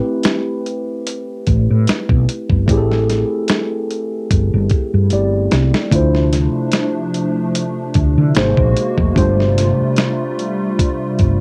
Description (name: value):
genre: R&B, neo-soul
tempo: 74 BPM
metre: 4/4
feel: swing 54% on 16ths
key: unclear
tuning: A4 = 441 Hz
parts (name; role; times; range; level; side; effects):
- mellow tine electric piano; accompaniment; 0.0-11.4 s; A3 to D5; -22 LUFS; equal; lush chorus, cassette tape
- dusty soul sampler-style drum kit; drums; 0.2-11.4 s; hi-hat, kick drum, snare drum; -20 LUFS; equal; cassette tape
- woody fretless electric bass; bass; 1.5-11.4 s; F1 to D3; -17 LUFS; equal; none
- hollow soft pad; sustained chords; 5.9-11.4 s; C3 to F#4; -23 LUFS; equal; ensemble chorus, cassette tape
room: light reverb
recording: home recording on cassette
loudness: -16 LUFS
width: mono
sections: 0.0-11.4 A section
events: drum fill 5.1-5.9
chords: 0.0 Am9; 5.9 Dm7; 8.4 G#9; 9.2 G9sus4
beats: 0.25 1.06 1.87 | 2.68 3.49 4.30 5.11 | 5.92 6.73 7.54 8.35 | 9.16 9.98 10.79